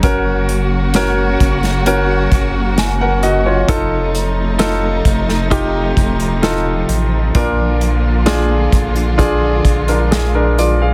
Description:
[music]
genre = pop ballad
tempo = 65 BPM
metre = 4/4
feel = straight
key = unclear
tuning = A4 = 443 Hz
[part]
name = clear concert grand piano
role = accompaniment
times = 0.0-10.9 s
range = Bb2 to Ab5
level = -20 LUFS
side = equal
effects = plate reverb
[part]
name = warm studio string section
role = sustained chords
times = 0.0-10.9 s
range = C3 to Gb4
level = -23 LUFS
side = equal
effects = plate reverb
[part]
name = saturated sub bass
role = bass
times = 0.0-10.9 s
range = Eb1 to Bb1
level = -20 LUFS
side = equal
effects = none
[part]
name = unplugged drum kit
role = drums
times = 0.0-10.8 s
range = hi-hat, kick drum, snare drum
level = -20 LUFS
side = equal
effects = none
[sound]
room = light reverb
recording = dense, heavily limited modern master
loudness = -15 LUFS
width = mono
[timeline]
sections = 0.0-10.9 A section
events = none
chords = 0.0 Gb; 3.7 F7; 7.3 Bb

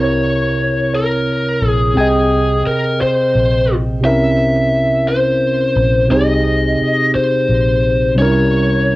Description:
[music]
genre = slow six-eight R&B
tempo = 58 BPM (dotted quarters)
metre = 6/8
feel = straight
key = unclear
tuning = A4 = 440 Hz
[part]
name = lead guitar through a small cranked amp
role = melody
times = 0.0-9.0 s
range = Ab4 to E5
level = -16 LUFS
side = left 1 dB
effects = overdrive, cassette tape
[part]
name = tine electric piano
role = accompaniment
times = 0.0-9.0 s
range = C3 to G5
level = -16 LUFS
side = right 1 dB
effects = medium stereo tremolo, cassette tape
[part]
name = vintage muted fingered electric bass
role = bass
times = 0.0-9.0 s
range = Bb1 to C2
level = -19 LUFS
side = equal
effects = none
[sound]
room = light reverb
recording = home recording on cassette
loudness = -12 LUFS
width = side -18 dB against mid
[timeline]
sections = 0.0-9.0 A section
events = none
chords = 0.0 C7b9; 2.0 Bb13sus4; 4.0 C7b9; 6.1 Bb13sus4; 8.2 C7b9

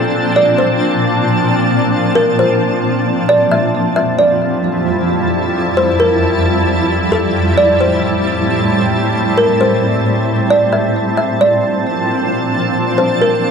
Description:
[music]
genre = hip hop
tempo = 133 BPM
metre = 4/4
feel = half-time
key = Bb lydian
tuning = A4 = 440 Hz
[part]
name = kalimba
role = melody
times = 0.0-13.5 s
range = A4 to E5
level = -15 LUFS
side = equal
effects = ping-pong delay
[part]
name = shimmering ambient pad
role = sustained chords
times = 0.0-13.5 s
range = F2 to A5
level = -14 LUFS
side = equal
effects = chorus, built-in reverb
[sound]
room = light reverb, small room reverb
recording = dark, warm production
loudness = -12 LUFS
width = side -6 dB against mid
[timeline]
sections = 0.0-13.5 A section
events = none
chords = 0.0 Bbmaj9; 3.7 Fmaj9; 7.3 Am7; 11.0 Bbmaj9

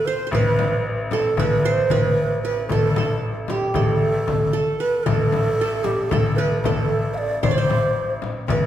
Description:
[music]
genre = Turkish makam ensemble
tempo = 228 BPM (eighths)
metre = 9/8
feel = straight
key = A makam ussak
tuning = A4 = 440 Hz
[part]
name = breathy low ney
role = melody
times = 0.0-8.7 s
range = G4 to F5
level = -22 LUFS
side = right 2 dB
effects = none
[part]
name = qanun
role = second line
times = 0.0-8.7 s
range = G4 to D5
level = -27 LUFS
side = right 5 dB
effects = none
[part]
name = warm baby grand piano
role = bass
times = 0.3-8.7 s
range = A1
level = -24 LUFS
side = left 1 dB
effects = none
[part]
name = darbuka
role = percussion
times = 0.3-8.6 s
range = none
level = -26 LUFS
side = left 4 dB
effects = none
[part]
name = frame drum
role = percussion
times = 0.3-8.6 s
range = none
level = -28 LUFS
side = left 4 dB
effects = none
[sound]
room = wet recital hall reverb, RT60 1.5 s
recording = recorded in a church or concert hall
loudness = -18 LUFS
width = side -11 dB against mid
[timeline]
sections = 0.0-8.7 A section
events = none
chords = none

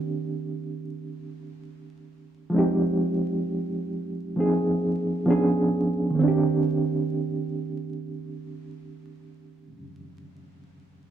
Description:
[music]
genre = hip hop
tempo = 66 BPM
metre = 4/4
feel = swing 56% on 16ths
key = C minor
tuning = A4 = 440 Hz
[part]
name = reed electric piano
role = accompaniment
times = 0.0-11.1 s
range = Eb3 to Ab4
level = -24 LUFS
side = right 2 dB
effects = overdrive, fast tremolo, cassette tape, plate reverb
[sound]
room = moderate small room reverb, RT60 0.5 s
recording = vinyl crackle, studio reverb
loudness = -23 LUFS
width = side -9 dB against mid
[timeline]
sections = 0.0-6.2 A section; 6.2-9.8 B section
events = none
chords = 0.0 Cm9; 2.5 Fm9; 4.4 Bb9sus4; 5.3 Bdim7; 6.2 Cm9

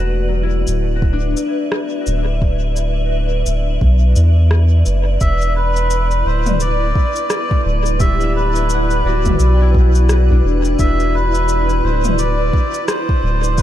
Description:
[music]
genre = ambient dub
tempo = 86 BPM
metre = 4/4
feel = swing 59% on 16ths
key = E minor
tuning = A4 = 441 Hz
[part]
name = granular cloud pad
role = sustained chords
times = 0.0-13.6 s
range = E4 to F#5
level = -23 LUFS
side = equal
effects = built-in reverb
[part]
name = concert harp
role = arpeggios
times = 0.0-13.1 s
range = F#3 to A5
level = -25 LUFS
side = left 4 dB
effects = dub echo
[part]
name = soft dub sub bass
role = bass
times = 0.0-13.6 s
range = D1 to E2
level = -15 LUFS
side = equal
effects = none
[part]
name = organic electronic drum kit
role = drums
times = 0.7-13.6 s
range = cabasa, rim click, toms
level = -25 LUFS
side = left 1 dB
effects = dub echo
[part]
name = electronic kick drum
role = drums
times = 1.0-13.6 s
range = none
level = -16 LUFS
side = equal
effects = none
[part]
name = melodica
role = melody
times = 5.2-13.6 s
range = B4 to E5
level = -21 LUFS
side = equal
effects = dub echo
[sound]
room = little or no reverb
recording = none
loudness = -13 LUFS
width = side -12 dB against mid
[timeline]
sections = 0.0-5.2 A section; 5.2-13.6 B section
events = none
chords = 0.0 Bm; 5.2 Em7

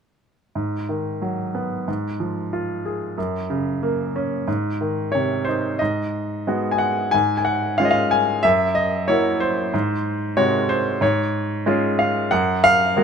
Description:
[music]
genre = classical, lyrical solo piano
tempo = 92 BPM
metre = 4/4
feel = rubato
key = unclear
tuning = A4 = 440 Hz
[part]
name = bright baby grand piano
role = solo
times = 0.6-13.0 s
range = F#2 to G#5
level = -19 LUFS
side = equal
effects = none
[sound]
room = light reverb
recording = minimal, uncompressed stereo recording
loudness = -19 LUFS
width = side -6 dB against mid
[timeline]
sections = 0.6-5.8 A section; 5.8-13.0 B section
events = none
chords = 0.6 G#m7; 1.9 Fm/Ab; 3.2 F#; 4.5 G#; 5.8 G#m7; 7.1 C#/G#; 8.4 F#7; 9.7 G#7; 11.0 C#/G#; 12.3 N.C.

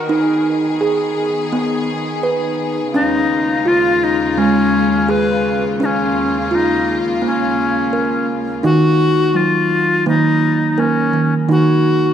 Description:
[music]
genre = world meditative, meditative tuned percussion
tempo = 84 BPM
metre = 4/4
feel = swing 55% on 16ths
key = Eb minor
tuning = A4 = 440 Hz
[part]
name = clear studio string section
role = sustained chords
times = 0.0-8.6 s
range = Eb2 to Ab4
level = -23 LUFS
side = left 3 dB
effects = none
[part]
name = kalimba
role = arpeggios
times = 0.0-12.1 s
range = Eb3 to Cb5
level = -16 LUFS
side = right 2 dB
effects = none
[part]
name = bright reedy tenor recorder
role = melody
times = 2.9-12.1 s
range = Db4 to Cb5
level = -17 LUFS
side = left 3 dB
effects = tape echo
[sound]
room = wet concert hall reverb, RT60 2.0 s, small room ambience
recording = none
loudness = -14 LUFS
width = side -9 dB against mid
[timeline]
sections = 0.0-12.1 A section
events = none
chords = 0.1 Abm/Eb; 2.9 Db/Eb; 5.8 Bbm/Eb; 8.6 Ebm; 11.5 N.C.

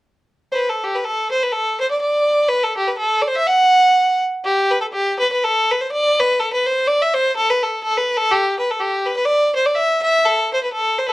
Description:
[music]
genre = celtic folk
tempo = 124 BPM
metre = 2/4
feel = swing 56% on 8ths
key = unclear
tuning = A4 = 440 Hz
[part]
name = clear fiddle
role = solo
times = 0.5-11.1 s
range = G4 to F#5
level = -15 LUFS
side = equal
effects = none
[sound]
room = moderate studio ambience, RT60 0.5 s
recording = worn, warbling old tape, cassette tape, warbly pitch drift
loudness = -15 LUFS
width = side -18 dB against mid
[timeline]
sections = 0.5-4.4 A section; 4.4-11.1 B section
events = none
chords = none

